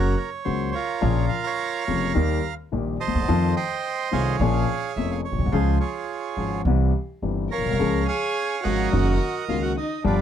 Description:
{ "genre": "tango", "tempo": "106 BPM", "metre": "4/4", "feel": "rubato", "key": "unclear", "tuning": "A4 = 440 Hz", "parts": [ { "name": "bandoneon", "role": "melody", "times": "0.0-10.2 s", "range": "F4 to Bb5", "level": "-27 LUFS", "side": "right 7 dB", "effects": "none" }, { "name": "warm concert grand piano", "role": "accompaniment", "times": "0.0-10.2 s", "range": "F1 to Ab4", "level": "-24 LUFS", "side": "left 5 dB", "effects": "none" }, { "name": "upright bass", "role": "bass", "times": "0.0-10.2 s", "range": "F1 to F2", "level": "-24 LUFS", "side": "right 2 dB", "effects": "none" }, { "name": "warm violin", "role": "second line", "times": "7.5-10.2 s", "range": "D4 to Bb4", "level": "-28 LUFS", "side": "left 1 dB", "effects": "none" } ], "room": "light reverb", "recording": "dark, warm production", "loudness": "-21 LUFS", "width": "side -9 dB against mid", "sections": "0.0-10.2 A section", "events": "none", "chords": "0.0 Gb; 1.0 Bbm; 2.2 Eb; 3.3 F7; 4.4 Bbm7; 5.5 Db; 6.7 C; 7.8 Db; 8.9 Gb6" }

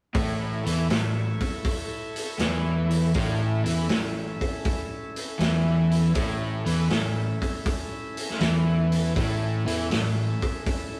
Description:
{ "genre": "blues rock power trio and southern rock", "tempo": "80 BPM", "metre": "4/4", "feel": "swing 68% on 8ths", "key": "A major", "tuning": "A4 = 438 Hz", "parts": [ { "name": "overdriven tonewheel organ", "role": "sustained chords", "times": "0.1-11.0 s", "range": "C#4 to C#5", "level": "-38 LUFS", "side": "equal", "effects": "slow rotary speaker" }, { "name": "overdriven semi-hollow guitar", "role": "riff", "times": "0.1-10.3 s", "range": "A2 to E3", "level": "-27 LUFS", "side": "equal", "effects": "none" }, { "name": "growling fingered electric bass", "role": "bass", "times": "0.1-10.4 s", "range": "A1 to E2", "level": "-33 LUFS", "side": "equal", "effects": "overdrive" }, { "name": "vintage drum kit", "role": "drums", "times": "0.1-10.9 s", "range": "hi-hat, kick drum, snare drum", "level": "-31 LUFS", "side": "equal", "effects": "none" } ], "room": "wet stone room reverb, RT60 1.2 s", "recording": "rough rehearsal-room recording, warm saturation", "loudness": "-26 LUFS", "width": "mono", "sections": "0.2-11.0 A section", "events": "none", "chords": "0.2 A" }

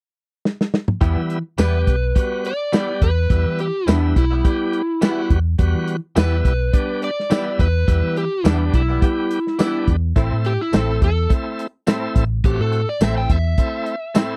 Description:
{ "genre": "straight-eighth soul blues", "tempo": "105 BPM", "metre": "4/4", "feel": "swing 54% on 16ths", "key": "E minor", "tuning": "A4 = 441 Hz", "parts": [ { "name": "warm soul drum kit", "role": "drums", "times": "0.5-14.3 s", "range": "hi-hat, kick drum, snare drum, tambourine, toms", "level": "-20 LUFS", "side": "equal", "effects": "none" }, { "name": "bright tonewheel organ", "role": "accompaniment", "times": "1.0-14.4 s", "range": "G3 to G4", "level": "-28 LUFS", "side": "equal", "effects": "overdrive, fast rotary speaker" }, { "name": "direct-recorded clean electric guitar", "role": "stabs", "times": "1.0-14.3 s", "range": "A2 to E4", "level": "-29 LUFS", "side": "equal", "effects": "ensemble chorus" }, { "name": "vintage muted fingered electric bass", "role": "bass", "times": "1.0-13.5 s", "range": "A1 to E3", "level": "-21 LUFS", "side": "equal", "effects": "none" }, { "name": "overdriven slide guitar", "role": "melody", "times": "1.6-14.4 s", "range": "D4 to G5", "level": "-25 LUFS", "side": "equal", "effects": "none" } ], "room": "little or no reverb", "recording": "dry, close 1970s-style studio recording", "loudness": "-19 LUFS", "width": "mono", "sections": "0.0-1.0 A section; 1.0-14.4 B section", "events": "drum fill 0.4-1.0", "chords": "0.0 N.C.; 1.0 Em; 10.2 Am" }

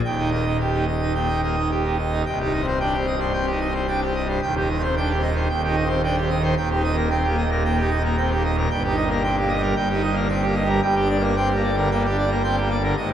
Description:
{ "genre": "classical, organ toccata", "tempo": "112 BPM", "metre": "4/4", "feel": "straight", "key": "C minor", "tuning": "A4 = 440 Hz", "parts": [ { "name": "pipe organ, full organ", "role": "solo", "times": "0.0-13.1 s", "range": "C1 to G5", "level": "-19 LUFS", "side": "right 1 dB", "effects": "none" } ], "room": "wet cathedral reverb, RT60 5.5 s", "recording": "none", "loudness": "-19 LUFS", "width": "side -10 dB against mid", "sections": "0.0-2.3 A section; 2.3-13.1 B section", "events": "none", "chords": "0.0 Eb; 2.3 Cm; 4.4 Cm/Eb; 6.6 Eb; 8.7 Eb/G; 10.8 Gm" }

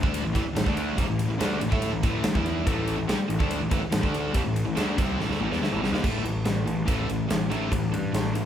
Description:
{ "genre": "hard rock", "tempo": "142 BPM", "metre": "4/4", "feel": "straight", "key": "A minor", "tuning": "A4 = 439 Hz", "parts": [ { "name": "cranked stack guitar", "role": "riff", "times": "0.0-8.5 s", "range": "A2 to A4", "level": "-32 LUFS", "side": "right 8 dB", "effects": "overdrive" }, { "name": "crunchy overdriven guitar", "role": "riff", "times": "0.0-8.5 s", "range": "A2 to A4", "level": "-29 LUFS", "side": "left 5 dB", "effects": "none" }, { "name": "fuzz picked electric bass", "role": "bass", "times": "0.0-8.5 s", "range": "A1 to A2", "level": "-31 LUFS", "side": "right 1 dB", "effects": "overdrive" }, { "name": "big rock drum kit", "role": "drums", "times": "0.0-8.4 s", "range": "crash cymbal, kick drum, ride cymbal, snare drum", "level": "-27 LUFS", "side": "right 1 dB", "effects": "none" } ], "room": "moderate large studio reverb, RT60 0.9 s", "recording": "band playing live in one room", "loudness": "-23 LUFS", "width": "side -10 dB against mid", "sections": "0.0-6.0 A section; 6.0-8.5 B section", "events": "drum fill 5.2-6.0", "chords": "0.0 Am; 6.0 A5" }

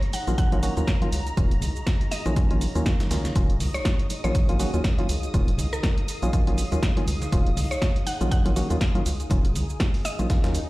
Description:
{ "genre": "deep house", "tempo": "121 BPM", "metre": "4/4", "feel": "swing 57% on 16ths", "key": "Eb minor", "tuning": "A4 = 440 Hz", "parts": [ { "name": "punchy analog drum machine", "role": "drums", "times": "0.0-10.7 s", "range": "cabasa, hi-hat, snare drum", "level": "-32 LUFS", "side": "equal", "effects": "none" }, { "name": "granular cloud pad", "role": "texture", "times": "0.0-10.7 s", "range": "Eb4 to Ab5", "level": "-39 LUFS", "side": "equal", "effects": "built-in reverb, sidechain pumping" }, { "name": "soft string machine", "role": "texture", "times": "0.0-10.7 s", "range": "Bb5 to Eb6", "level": "-42 LUFS", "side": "equal", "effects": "phaser, ensemble chorus, sidechain pumping" }, { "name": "mallet-like synth pluck", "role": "melody", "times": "0.1-10.4 s", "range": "Bb4 to Gb5", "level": "-34 LUFS", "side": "equal", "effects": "chorus, tape echo" }, { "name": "breakbeat sampler-style drum kit", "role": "drums", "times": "0.1-10.7 s", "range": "hi-hat, snare drum", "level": "-42 LUFS", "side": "equal", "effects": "high-pass filter on hats, high-pass filter on snare, high-pass filter on room" }, { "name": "congas", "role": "percussion", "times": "0.1-10.4 s", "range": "none", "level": "-35 LUFS", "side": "right 1 dB", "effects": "none" }, { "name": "percussive organ stab", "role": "stabs", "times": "0.3-10.6 s", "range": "Eb3 to Gb4", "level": "-29 LUFS", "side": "equal", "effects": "chorus, sidechain pumping, tape echo" }, { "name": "round analog bass", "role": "bass", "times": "0.3-10.6 s", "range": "Eb1 to Eb2", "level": "-26 LUFS", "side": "equal", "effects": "sidechain pumping" }, { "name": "electronic kick drum", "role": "drums", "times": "0.4-10.4 s", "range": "none", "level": "-24 LUFS", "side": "equal", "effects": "none" }, { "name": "swell", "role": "sound effects", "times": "10.5-10.7 s", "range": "none", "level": "-36 LUFS", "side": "equal", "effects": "none" } ], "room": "light reverb", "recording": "played on a big sound system in a bare room, large studio reverb", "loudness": "-21 LUFS", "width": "side -19 dB against mid", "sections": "0.0-10.7 A section", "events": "swell 10.5", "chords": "0.0 Ebm9" }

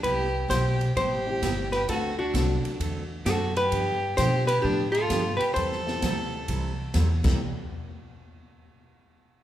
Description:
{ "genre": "country, western swing", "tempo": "130 BPM", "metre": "4/4", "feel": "swing 66% on 8ths", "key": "C major", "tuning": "A4 = 440 Hz", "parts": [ { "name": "archtop guitar, miked and amplified", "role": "melody", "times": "0.0-6.9 s", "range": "F#4 to C5", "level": "-27 LUFS", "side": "equal", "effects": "none" }, { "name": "clear fiddle", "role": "second line", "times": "0.0-6.9 s", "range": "D4 to A4", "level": "-31 LUFS", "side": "right 1 dB", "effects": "none" }, { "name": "picked steel-string acoustic guitar", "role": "accompaniment", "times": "0.0-7.4 s", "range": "C3 to A4", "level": "-34 LUFS", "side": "right 3 dB", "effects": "none" }, { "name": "upright bass", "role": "bass", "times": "0.0-7.4 s", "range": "G1 to B2", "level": "-28 LUFS", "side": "equal", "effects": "none" }, { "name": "swinging big-band drum kit", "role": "drums", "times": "0.0-7.3 s", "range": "crash cymbal, hi-hat, kick drum, ride cymbal, snare drum", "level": "-32 LUFS", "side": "equal", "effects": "none" }, { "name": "dark upright piano", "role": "accompaniment", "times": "1.3-7.4 s", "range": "F#3 to G4", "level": "-36 LUFS", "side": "left 3 dB", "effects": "none" } ], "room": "moderate large studio reverb, RT60 1.4 s", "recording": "band playing live in one room", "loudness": "-23 LUFS", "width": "side -12 dB against mid", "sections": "0.0-7.4 A section; 7.4-9.3 B section", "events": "none", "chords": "0.0 Cmaj7; 1.9 D7; 3.7 G7; 5.6 C6; 7.4 N.C." }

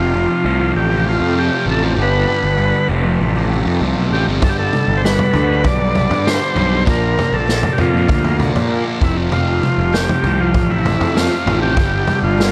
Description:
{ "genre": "psychedelic rock", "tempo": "98 BPM", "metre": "4/4", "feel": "straight", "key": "unclear", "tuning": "A4 = 440 Hz", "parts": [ { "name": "combo organ", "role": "melody", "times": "0.0-12.5 s", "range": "E4 to D5", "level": "-22 LUFS", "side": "equal", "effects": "dub echo" }, { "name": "chamber organ, soft reed", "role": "sustained chords", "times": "0.0-12.5 s", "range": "B2 to G4", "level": "-30 LUFS", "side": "equal", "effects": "none" }, { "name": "fuzz guitar", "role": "riff", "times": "0.0-12.5 s", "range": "F2 to Bb3", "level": "-23 LUFS", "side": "equal", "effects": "distortion, phaser, dub echo" }, { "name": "fuzz picked electric bass", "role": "bass", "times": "0.0-12.5 s", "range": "F1 to Bb2", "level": "-21 LUFS", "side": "equal", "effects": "overdrive" }, { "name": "vintage drum kit", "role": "drums", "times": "4.4-12.5 s", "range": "kick drum, snare drum, toms", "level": "-21 LUFS", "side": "equal", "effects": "none" } ], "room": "light reverb", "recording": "echo-heavy mix", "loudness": "-16 LUFS", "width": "mono", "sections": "0.0-12.5 A section", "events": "none", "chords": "0.0 F; 2.0 G; 2.9 F; 4.4 G; 6.9 Bb; 9.0 F; 11.8 G" }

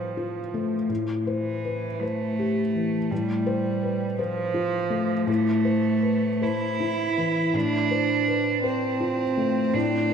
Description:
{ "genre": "neoclassical piano and strings", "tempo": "55 BPM (dotted quarters)", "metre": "6/8", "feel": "rubato", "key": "unclear", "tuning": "A4 = 441 Hz", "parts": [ { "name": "rich cello", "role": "second line", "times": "0.0-10.1 s", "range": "E3 to E4", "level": "-25 LUFS", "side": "right 3 dB", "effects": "diffuse ambient delay" }, { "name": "felt-muted upright piano", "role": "accompaniment", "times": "0.0-10.1 s", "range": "A2 to C5", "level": "-26 LUFS", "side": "left 3 dB", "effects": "none" } ], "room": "wet plate reverb, RT60 2.7 s", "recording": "dreamy mix soaked in reverb", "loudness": "-22 LUFS", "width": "side -7 dB against mid", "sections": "0.0-10.1 A section", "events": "none", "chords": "0.0 F/A; 0.9 C/A; 3.1 F/A; 5.3 Am; 7.5 F/A" }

